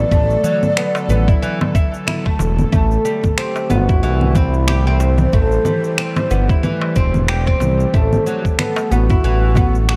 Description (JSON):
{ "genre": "organic downtempo", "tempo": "92 BPM", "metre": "4/4", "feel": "swing 57% on 16ths", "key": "A dorian", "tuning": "A4 = 440 Hz", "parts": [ { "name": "breathy mellow bass bansuri", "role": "melody", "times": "0.0-10.0 s", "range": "E4 to D5", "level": "-25 LUFS", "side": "equal", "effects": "tape echo" }, { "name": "bowed-like drone", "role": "sustained chords", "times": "0.0-10.0 s", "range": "D3 to A4", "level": "-28 LUFS", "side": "equal", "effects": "built-in reverb, sidechain pumping" }, { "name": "oud", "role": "arpeggios", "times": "0.0-10.0 s", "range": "E3 to G4", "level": "-24 LUFS", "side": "equal", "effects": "tape echo" }, { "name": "smooth synth bass", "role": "bass", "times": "0.0-10.0 s", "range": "E1 to C2", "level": "-19 LUFS", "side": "equal", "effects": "sidechain pumping" }, { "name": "electronic congas, shaker and finger snaps", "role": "drums", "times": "0.1-10.0 s", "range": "none", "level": "-24 LUFS", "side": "equal", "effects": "overdrive" }, { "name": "electronic kick drum", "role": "drums", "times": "0.1-9.7 s", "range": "none", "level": "-18 LUFS", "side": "equal", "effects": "none" }, { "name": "darbuka", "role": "percussion", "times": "0.4-9.7 s", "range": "none", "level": "-27 LUFS", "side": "equal", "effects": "none" } ], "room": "light reverb, studio reverb", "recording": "dark, warm production", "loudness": "-16 LUFS", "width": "mono", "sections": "0.0-10.0 A section", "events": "none", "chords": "0.0 Bm7/A; 2.7 Am7; 7.9 Bm7/A" }